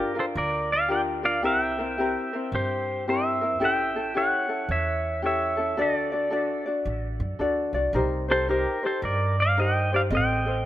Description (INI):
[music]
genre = Hawaiian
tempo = 111 BPM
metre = 4/4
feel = swing 64% on 8ths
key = unclear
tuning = A4 = 439 Hz
[part]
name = pedal steel guitar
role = melody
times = 0.0-10.7 s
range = G4 to G5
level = -25 LUFS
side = right 1 dB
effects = digital delay
[part]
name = ukulele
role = accompaniment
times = 0.0-10.7 s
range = C4 to Eb5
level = -27 LUFS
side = left 2 dB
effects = none
[part]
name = upright bass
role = bass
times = 0.4-10.7 s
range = A1 to G2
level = -30 LUFS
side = right 1 dB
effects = none
[sound]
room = light reverb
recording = rough home demo mix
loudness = -23 LUFS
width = side -13 dB against mid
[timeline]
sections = 0.0-10.7 A section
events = none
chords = 0.0 Gm7; 1.4 C7; 3.6 A7; 5.8 D; 7.9 Cm7; 10.1 Adim